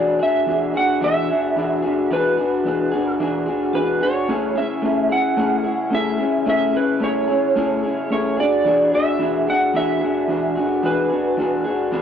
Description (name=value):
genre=indie pop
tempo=110 BPM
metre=4/4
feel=straight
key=unclear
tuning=A4 = 440 Hz
part: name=electric slide guitar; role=melody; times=0.0-11.9 s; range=B4 to F#5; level=-21 LUFS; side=right 2 dB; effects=analog chorus, tape echo
part: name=electric guitar through a small old amp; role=accompaniment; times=0.0-12.0 s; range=E3 to G#4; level=-20 LUFS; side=left 2 dB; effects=lush chorus, warbly pitch drift
room=light reverb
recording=dry, gritty hardware recording, cassette tape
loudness=-17 LUFS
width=side -8 dB against mid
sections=0.0-12.0 A section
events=none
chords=0.0 E9; 4.3 Amaj7; 8.4 E9